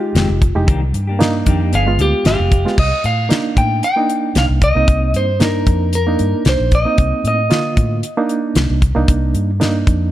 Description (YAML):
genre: straight-eighth soul blues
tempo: 114 BPM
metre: 4/4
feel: swing 55% on 16ths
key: C minor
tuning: A4 = 442 Hz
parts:
  - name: clean electric guitar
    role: melody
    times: 0.0-8.3 s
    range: F4 to G5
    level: -18 LUFS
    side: equal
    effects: none
  - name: barky reed electric piano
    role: accompaniment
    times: 0.0-10.1 s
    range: D3 to G4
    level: -20 LUFS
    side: right 4 dB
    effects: overdrive, fast tremolo
  - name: clean electric guitar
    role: stabs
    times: 0.1-2.7 s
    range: Eb3 to Ab4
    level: -25 LUFS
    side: left 4 dB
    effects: none
  - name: vintage muted fingered electric bass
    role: bass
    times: 0.1-10.1 s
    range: F1 to A2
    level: -17 LUFS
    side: equal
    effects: none
  - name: damped 70s drum kit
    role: drums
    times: 0.2-10.0 s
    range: crash cymbal, hi-hat, kick drum, snare drum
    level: -16 LUFS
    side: equal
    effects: none
room: light reverb, small room ambience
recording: none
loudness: -13 LUFS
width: side -13 dB against mid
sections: 0.0-2.8 A section; 2.8-10.1 B section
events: clean electric guitar solo 0.0-2.8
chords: 0.0 Fm9; 0.7 Cm9; 1.7 G7b9; 2.8 Cm9